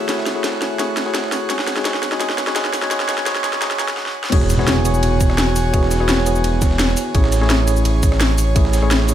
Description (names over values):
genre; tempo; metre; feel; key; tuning
liquid drum and bass; 170 BPM; 4/4; straight; E major; A4 = 440 Hz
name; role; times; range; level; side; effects
tine electric piano; accompaniment; 0.0-9.1 s; G#3 to C#5; -21 LUFS; equal; auto-pan, tape echo
airy breathy pad; sustained chords; 0.0-9.1 s; A3 to G#5; -26 LUFS; right 1 dB; chorus, sidechain pumping
breakbeat sampler-style drum kit; drums; 0.1-9.1 s; ride cymbal, snare drum; -29 LUFS; right 2 dB; high-pass filter on cymbals, studio reverb, high-pass filter on snare
garage drum kit; drums; 0.1-9.1 s; cabasa, crash cymbal, hi-hat, rim click, snare drum; -22 LUFS; left 1 dB; overdrive, studio reverb
smooth gliding synth bass; bass; 4.3-9.1 s; E1 to A1; -18 LUFS; equal; tube saturation
electronic kick drum; drums; 4.3-8.6 s; none; -17 LUFS; equal; overdrive, studio reverb
impact; sound effects; 4.3-5.7 s; none; -24 LUFS; equal; none
room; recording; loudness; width
light reverb; high-pass filter; -15 LUFS; side -11 dB against mid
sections
0.0-4.3 A section; 4.3-9.1 B section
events
build-up 0.0-4.3; drum fill 0.0-4.0, 4.0-4.3; drop 4.3-9.1; impact 4.3-5.7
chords
0.0 F#m9; 1.5 G#m7; 4.3 E69; 7.1 Amaj7